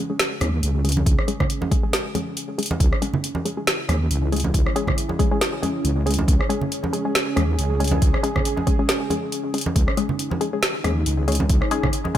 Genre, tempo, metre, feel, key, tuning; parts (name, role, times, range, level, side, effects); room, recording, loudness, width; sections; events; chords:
deep dubstep; 138 BPM; 4/4; swing 56% on 16ths, half-time; C# minor; A4 = 444 Hz
dark analog pad; sustained chords; 0.0-12.2 s; C#4 to G#4; -30 LUFS; right 1 dB; chorus
filtered dub chord stab; stabs; 0.0-12.2 s; G#3 to G#4; -27 LUFS; left 3 dB; chorus, dub echo
deep house drum kit; drums; 0.2-12.2 s; hi-hat, rim click, snare drum; -25 LUFS; equal
wobble bass; bass; 0.4-11.6 s; C#2 to D#2; -21 LUFS; equal; chorus
congas; percussion; 0.4-12.1 s; -28 LUFS; right 2 dB; dub echo
electronic kick drum; drums; 1.1-12.2 s; -21 LUFS; equal; overdrive
light reverb; -19 LUFS; side -11 dB against mid
0.0-12.2 A section
filter sweep on synth stab 0.0-12.2
0.0 C#5